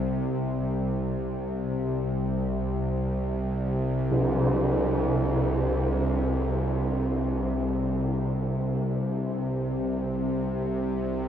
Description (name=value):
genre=dark ambient drone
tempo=free time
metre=none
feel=none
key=unclear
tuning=A4 = 439 Hz
part: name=bowed-like drone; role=drone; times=0.0-11.3 s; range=C2 to C3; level=-26 LUFS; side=equal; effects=built-in reverb
part: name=tam-tam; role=percussion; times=4.1-4.3 s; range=none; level=-30 LUFS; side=right 2 dB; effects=low-pass filter on cymbals
room=wet huge ambient reverb, RT60 8.7 s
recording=dark, warm production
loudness=-25 LUFS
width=side -9 dB against mid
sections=0.0-11.3 A section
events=none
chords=none